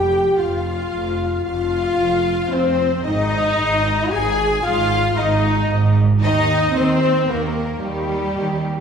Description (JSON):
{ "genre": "cinematic, epic orchestral film score", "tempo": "113 BPM", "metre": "3/4", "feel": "straight", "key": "unclear", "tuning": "A4 = 440 Hz", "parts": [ { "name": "warm symphonic violin section", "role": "melody", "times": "0.0-8.8 s", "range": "G4 to Ab5", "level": "-30 LUFS", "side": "left 2 dB", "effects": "none" }, { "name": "rich symphonic violin section", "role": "second line", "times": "0.0-8.8 s", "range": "G4 to Ab5", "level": "-27 LUFS", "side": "left 2 dB", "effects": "none" }, { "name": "rich symphonic viola section", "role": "accompaniment", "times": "0.0-8.8 s", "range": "G3 to Ab4", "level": "-25 LUFS", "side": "equal", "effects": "none" }, { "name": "warm French horn section", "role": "sustained chords", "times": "0.0-8.8 s", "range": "G3 to Ab4", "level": "-20 LUFS", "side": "left 2 dB", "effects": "none" }, { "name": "rich symphonic cello section", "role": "bass", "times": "0.0-8.8 s", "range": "F2 to Eb3", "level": "-24 LUFS", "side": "right 3 dB", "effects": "none" }, { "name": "rich symphonic double bass section", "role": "bass", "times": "0.0-8.8 s", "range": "F1 to Eb2", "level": "-24 LUFS", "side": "right 3 dB", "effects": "none" } ], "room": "wet scoring stage reverb, RT60 1.5 s", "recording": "heard from further back in the room", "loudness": "-16 LUFS", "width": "side -6 dB against mid", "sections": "0.0-8.8 A section", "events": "none", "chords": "0.0 F5; 3.0 Ab5; 6.2 Eb", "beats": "0.39 0.92 | 1.45 1.99 2.52 | 3.05 3.58 4.11 | 4.64 5.17 5.71 | 6.24 6.77 7.30 | 7.83 8.36" }